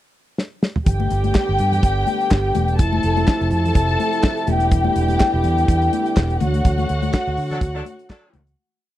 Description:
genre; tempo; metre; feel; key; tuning
disco; 124 BPM; 4/4; swing 56% on 16ths; unclear; A4 = 438 Hz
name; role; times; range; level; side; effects
damped 70s drum kit; drums; 0.4-8.6 s; handclaps, hi-hat, kick drum, snare drum, toms; -17 LUFS; equal; none
dark studio string section; second line; 0.9-8.5 s; F#4 to A5; -22 LUFS; left 2 dB; none
mellow French horn section; sustained chords; 0.9-8.6 s; C3 to C#5; -25 LUFS; right 2 dB; none
fingered electric bass; bass; 0.9-8.5 s; E1 to D3; -20 LUFS; equal; none
congas; percussion; 0.9-8.5 s; none; -28 LUFS; left 7 dB; none
warm horn section; stabs; 7.5-8.4 s; F#3 to A4; -34 LUFS; left 1 dB; none
room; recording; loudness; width
little or no reverb; dry, close 1970s-style studio recording; -16 LUFS; side -14 dB against mid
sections
0.0-0.9 pickup bar; 0.9-8.6 pre-chorus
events
drum fill 0.4-0.9; fade-out 6.6-8.6; band accent 6.6-8.6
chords
0.0 N.C.; 0.9 G; 2.8 Fmaj7; 4.5 Em7; 6.4 Dmaj7

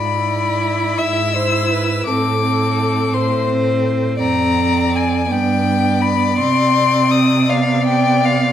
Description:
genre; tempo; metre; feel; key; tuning
classical, slow romantic movement for string quartet; 49-58 BPM (dotted quarters); 6/8; rubato; unclear; A4 = 441 Hz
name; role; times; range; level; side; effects
warm violin; melody; 0.0-8.5 s; D5 to E6; -19 LUFS; left 7 dB; none
rich violin; second line; 0.0-8.5 s; A4 to G5; -20 LUFS; left 3 dB; none
rich cello; bass; 0.0-8.5 s; F2 to C3; -20 LUFS; right 4 dB; none
rich viola; accompaniment; 0.2-8.5 s; B3 to E4; -19 LUFS; right 2 dB; none
room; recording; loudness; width
moderate recital hall reverb, RT60 1.6 s; none; -14 LUFS; side -10 dB against mid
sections
0.0-8.5 A section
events
none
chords
0.0 E7/G#; 2.1 Am; 4.2 Bb9/F; 5.3 G; 6.4 Cmadd9; 7.5 Gadd11/C

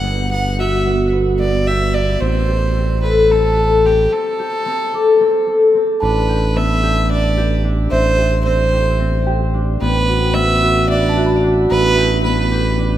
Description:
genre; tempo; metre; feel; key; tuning
contemporary instrumental, chamber music in an uneven meter; 221 BPM (eighths); 7/8; straight; A dorian; A4 = 439 Hz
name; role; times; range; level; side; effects
rich violin; melody; 0.0-13.0 s; G4 to F#5; -19 LUFS; right 2 dB; none
concert harp; arpeggios; 0.0-13.0 s; B3 to B4; -17 LUFS; left 2 dB; none
smooth synth bass; bass; 0.0-13.0 s; G1 to A1; -17 LUFS; right 1 dB; none
celesta; texture; 0.0-12.3 s; E5 to D6; -30 LUFS; right 1 dB; none
room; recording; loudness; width
wet cathedral reverb, RT60 4.8 s; in a vast, echoing space; -13 LUFS; side -12 dB against mid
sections
0.0-6.0 A section; 6.0-13.0 B section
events
none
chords
0.0 Gmaj7; 2.2 Am7; 6.0 Gadd9/A; 7.9 Am7; 9.8 Bm/A

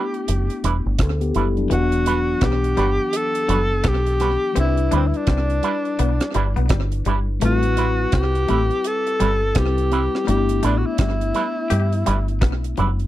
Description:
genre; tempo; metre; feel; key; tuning
lovers rock reggae; 84 BPM; 4/4; swing 61% on 16ths; unclear; A4 = 439 Hz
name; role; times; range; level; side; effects
breathy tenor saxophone; melody; 0.0-12.3 s; C4 to A4; -23 LUFS; equal; tape echo
mellow tine electric piano; accompaniment; 0.0-13.1 s; E3 to F#5; -26 LUFS; left 4 dB; slapback echo
electric guitar with an envelope filter; stabs; 0.0-12.9 s; G3 to B4; -24 LUFS; right 6 dB; tremolo
deep reggae drum kit; drums; 0.1-13.1 s; hi-hat, kick drum, rim click; -23 LUFS; right 1 dB; slapback echo
deep dub fingered electric bass; bass; 0.3-13.1 s; E1 to G2; -21 LUFS; equal; none
twangy electric guitar; riff; 1.7-13.0 s; E3 to G4; -28 LUFS; left 5 dB; slapback echo
room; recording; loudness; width
light reverb; dry, close 1970s-style studio recording; -18 LUFS; side -14 dB against mid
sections
0.0-13.1 A section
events
none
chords
0.0 G6; 1.7 Em9; 4.6 Cmaj9; 7.4 Am9; 10.3 G6

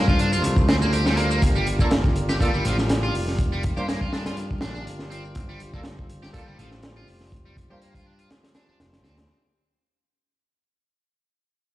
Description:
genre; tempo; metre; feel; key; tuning
breakbeat, breaks; 122 BPM; 4/4; swing 54% on 16ths; G minor; A4 = 441 Hz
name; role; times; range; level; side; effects
percussive tonewheel organ; sustained chords; 0.0-9.3 s; G3 to C5; -32 LUFS; equal; overdrive, stopped rotary speaker, sidechain pumping
distorted electric guitar; riff; 0.0-9.2 s; F3 to G4; -29 LUFS; equal; overdrive, vintage 12-bit sampler grit, digital delay
picked electric bass; bass; 0.0-9.2 s; F1 to G2; -26 LUFS; equal; none
crunchy breakbeat drum kit; drums; 0.1-9.3 s; hi-hat, kick drum, snare drum; -24 LUFS; equal; none
shaker; drums; 0.1-9.3 s; none; -43 LUFS; equal; overdrive, low-pass filter on perc
clear horn section; stabs; 1.8-7.8 s; Bb3 to C5; -32 LUFS; right 2 dB; low-pass filter, digital delay
room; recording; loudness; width
light reverb, small room ambience; played on a big sound system in a bare room, stone room reverb, vinyl crackle; -20 LUFS; side -15 dB against mid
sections
0.0-9.3 A section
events
fade-out 0.0-9.3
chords
0.0 Gm9

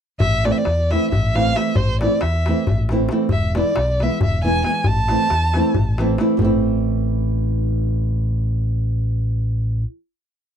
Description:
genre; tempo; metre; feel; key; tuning
balkan folk, Balkan wedding band; 271 BPM (eighths); 7/8; straight; A harmonic minor; A4 = 440 Hz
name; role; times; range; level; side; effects
warm violin; melody; 0.2-6.0 s; C5 to A5; -22 LUFS; equal; none
overdriven fingered electric bass; bass; 0.2-9.8 s; E1 to E2; -20 LUFS; equal; none
darbuka; percussion; 0.2-6.6 s; none; -23 LUFS; left 2 dB; none
nylon-string guitar; accompaniment; 0.4-9.9 s; E3 to E4; -21 LUFS; right 2 dB; none
room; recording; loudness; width
little or no reverb; dry, close 1970s-style studio recording; -17 LUFS; side -8 dB against mid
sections
0.2-6.4 A section; 6.4-9.5 final chord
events
none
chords
0.2 Am; 3.3 E; 4.9 Am

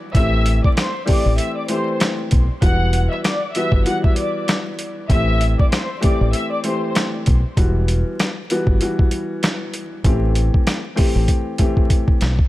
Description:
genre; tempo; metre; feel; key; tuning
hip hop, boom-bap hip-hop; 97 BPM; 4/4; swing 57% on 16ths; unclear; A4 = 440 Hz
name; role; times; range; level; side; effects
dark upright piano; accompaniment; 0.0-12.3 s; E3 to G4; -23 LUFS; left 2 dB; cassette tape, high-pass filter, low-pass filter
rich studio violin section; melody; 0.1-6.9 s; C5 to F#6; -24 LUFS; left 1 dB; high-pass filter, low-pass filter, digital delay
deep dub fingered electric bass; bass; 0.1-12.4 s; E1 to B1; -18 LUFS; equal; none
boom bap sampler-style drum kit; drums; 0.1-12.5 s; hi-hat, kick drum, rim click, snare drum; -18 LUFS; equal; none
room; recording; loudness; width
little or no reverb; vinyl crackle; -16 LUFS; side -17 dB against mid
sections
0.0-12.5 A section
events
drum fill 11.3-12.5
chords
0.1 Am7; 2.6 Emadd9; 5.1 Am7; 7.6 Emadd9; 10.0 Am7

